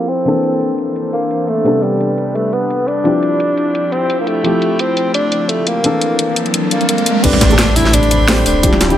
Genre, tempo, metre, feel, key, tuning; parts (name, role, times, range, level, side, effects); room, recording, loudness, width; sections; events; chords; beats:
liquid drum and bass; 172 BPM; 4/4; swing 54% on 16ths; A phrygian; A4 = 440 Hz
breathy tenor saxophone; melody; 0.0-8.8 s; G3 to E4; -17 LUFS; equal; digital delay
dark concert grand piano; accompaniment; 0.0-9.0 s; C3 to C5; -18 LUFS; left 1 dB
airy breathy pad; sustained chords; 0.0-9.0 s; E3 to C6; -22 LUFS; equal; chorus, sidechain pumping
drum and bass drum kit; drums; 0.1-8.9 s; crash cymbal, hi-hat, snare drum; -17 LUFS; equal; overdrive, low-pass filter on snare, studio reverb, low-pass filter on hats, low-pass filter on cymbals
riser and impact; sound effects; 5.6-8.6 s; -20 LUFS; right 2 dB
sub bass with octave; bass; 7.2-9.0 s; D1 to A1; -16 LUFS; equal
electronic kick drum; drums; 7.2-8.7 s; -15 LUFS; equal; studio reverb
jungle sampler-style drum kit; drums; 7.2-9.0 s; hi-hat, snare drum; -21 LUFS; right 1 dB; overdrive, high-pass filter on snare, studio reverb, high-pass filter on hats
light reverb; low-pass filter; -12 LUFS; side -11 dB against mid
0.0-7.2 A section; 7.2-9.0 B section
filter sweep on drum 0.0-7.2; filter sweep 0.0-7.2; riser 5.6-7.2; drop 7.2-9.0; impact 7.2-8.6
0.3 Bbmaj9#11; 1.7 Am11; 3.1 Dm11; 4.4 G13sus4; 5.8 Bbmaj9#11; 7.2 Am11
| 0.26 0.61 0.96 1.31 | 1.66 2.01 2.35 2.70 | 3.05 3.40 3.75 4.10 | 4.45 4.80 5.15 5.49 | 5.84 6.19 6.54 6.89 | 7.24 7.59 7.94 8.29 | 8.63